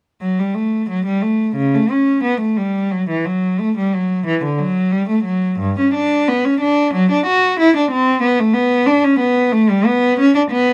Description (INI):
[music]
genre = classical, baroque-style suite movement for unaccompanied cello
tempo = 90 BPM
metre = 4/4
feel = rubato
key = unclear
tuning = A4 = 440 Hz
[part]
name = rich cello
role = solo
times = 0.2-10.7 s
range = G2 to F#4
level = -16 LUFS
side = equal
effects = none
[sound]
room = little or no reverb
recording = close, detailed microphones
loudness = -16 LUFS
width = mono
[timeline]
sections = 0.2-10.7 A section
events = none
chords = none